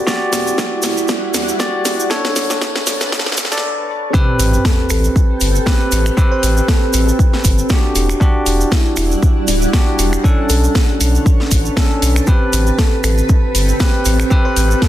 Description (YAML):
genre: deep house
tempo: 118 BPM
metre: 4/4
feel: swing 55% on 16ths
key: A dorian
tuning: A4 = 440 Hz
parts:
  - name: bell-like tine electric piano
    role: stabs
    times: 0.0-14.9 s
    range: C4 to D5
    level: -19 LUFS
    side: equal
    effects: sidechain pumping, ping-pong delay
  - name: granular cloud pad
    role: texture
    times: 0.0-14.9 s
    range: D3 to A5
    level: -24 LUFS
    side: right 1 dB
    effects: built-in reverb, sidechain pumping
  - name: electronic kick drum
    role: drums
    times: 0.1-14.9 s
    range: none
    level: -13 LUFS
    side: equal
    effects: high-pass filter on kick, studio reverb
  - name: house drum kit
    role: drums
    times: 0.1-14.9 s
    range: finger snaps, hi-hat, snare drum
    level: -21 LUFS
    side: equal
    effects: studio reverb
  - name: tube shaker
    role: percussion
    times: 0.1-14.9 s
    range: none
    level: -25 LUFS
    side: right 4 dB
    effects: none
  - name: round analog bass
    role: bass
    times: 0.3-14.7 s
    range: D1 to E2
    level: -16 LUFS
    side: equal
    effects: sidechain pumping
  - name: sub drop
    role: sound effects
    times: 4.2-6.2 s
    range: none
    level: -25 LUFS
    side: equal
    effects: none
  - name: bell-like FM electric piano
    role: melody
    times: 4.6-14.9 s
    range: D4 to C5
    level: -25 LUFS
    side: equal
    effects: chorus, tremolo, digital delay
room: light reverb, digital ambience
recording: dense, heavily limited modern master, high-pass filter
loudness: -12 LUFS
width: side -13 dB against mid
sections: 0.0-4.1 A section; 4.1-14.9 B section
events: build-up 0.0-4.1; drum fill 0.0-3.6; filter sweep 0.0-4.1; break 3.6-4.1; drop 4.1-14.9; impact 4.1-6.2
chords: 0.0 Em9; 2.1 Bm9; 4.1 Am9; 8.0 Em9; 10.2 Bm9; 12.3 Am9